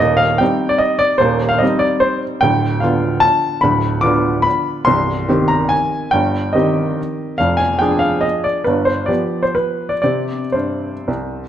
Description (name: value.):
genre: classical, piano waltz.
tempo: 113-158 BPM.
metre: 3/4.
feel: rubato.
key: C minor.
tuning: A4 = 440 Hz.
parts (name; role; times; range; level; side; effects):
bright upright piano; solo; 0.0-11.5 s; C1 to D6; -14 LUFS; equal; none.
room: moderate recital hall reverb, RT60 1.7 s.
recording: dark, warm production.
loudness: -14 LUFS.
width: side -10 dB against mid.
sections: 0.0-11.5 A section.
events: none.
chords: 0.0 Cm/Eb; 2.4 Bdim/D; 4.9 Cm; 7.4 Ddim/F; 8.7 G7; 10.0 C5.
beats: | 0.02 0.41 0.82 | 1.22 1.62 2.03 | 2.43 2.82 3.23 | 3.64 4.04 4.46 | 4.87 5.29 5.72 | 6.14 6.55 6.98 | 7.40 7.81 8.24 | 8.67 9.10 9.56 | 10.04 10.55 11.08.